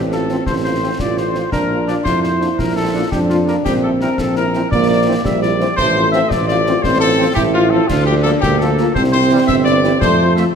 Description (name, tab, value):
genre	military-style march for wind band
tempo	113 BPM (dotted quarters)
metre	6/8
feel	straight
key	F major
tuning	A4 = 441 Hz
part	warm euphonium	second line	0.0-10.5 s	G3 to F4	-19 LUFS	right 3 dB	none
part	warm tuba	bass	0.0-10.5 s	G1 to F2	-18 LUFS	right 2 dB	none
part	dark trumpet section	melody	0.1-10.4 s	F4 to E5	-18 LUFS	left 2 dB	none
part	dark French horn section	accompaniment	0.1-10.4 s	F3 to F4	-24 LUFS	left 6 dB	none
part	concert snare drum, concert bass drum and clash cymbals	drums	0.1-10.5 s	none	-24 LUFS	left 2 dB	none
part	clear trombone section	sustained chords	0.3-10.4 s	E3 to D4	-28 LUFS	right 2 dB	none
room	wet scoring stage reverb, RT60 2.0 s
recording	none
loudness	-13 LUFS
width	side -6 dB against mid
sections	0.0-10.6 A section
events	none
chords	0.0 F/A; 1.5 Bb; 3.7 C7/Bb; 5.8 F/A; 7.9 Bb/D; 9.0 C; 10.0 F